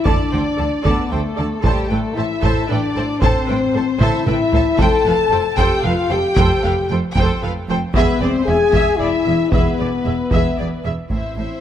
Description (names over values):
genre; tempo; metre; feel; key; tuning
cinematic, epic orchestral film score; 114 BPM; 3/4; straight; unclear; A4 = 440 Hz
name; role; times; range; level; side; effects
warm symphonic violin section; second line; 0.0-11.6 s; G4 to A5; -25 LUFS; left 1 dB; none
mellow French horn section; sustained chords; 0.0-11.6 s; G3 to A4; -19 LUFS; left 4 dB; none
warm symphonic violin section; melody; 0.1-11.6 s; D5 to A5; -27 LUFS; left 2 dB; none
rich symphonic viola section; accompaniment; 0.1-11.6 s; E4 to E5; -25 LUFS; right 2 dB; none
rich symphonic double bass section; bass; 0.1-11.4 s; E1 to D2; -24 LUFS; right 3 dB; none
warm symphonic cello section; bass; 0.1-11.4 s; E2 to D3; -25 LUFS; right 2 dB; none
solo taiko drums; drums; 0.1-11.6 s; none; -21 LUFS; equal; none
room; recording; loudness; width
moderate concert hall reverb, RT60 2.2 s; close, detailed microphones; -15 LUFS; side -10 dB against mid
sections
0.0-11.1 A section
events
drum fill 4.0-4.8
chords
0.0 D5; 1.6 Am; 4.8 Fadd9; 8.0 E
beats
| 0.06 0.59 1.12 | 1.64 2.17 2.69 | 3.22 3.75 4.27 | 4.80 5.33 5.85 | 6.38 6.90 7.43 | 7.96 8.48 9.01 | 9.53 10.06 10.58 | 11.11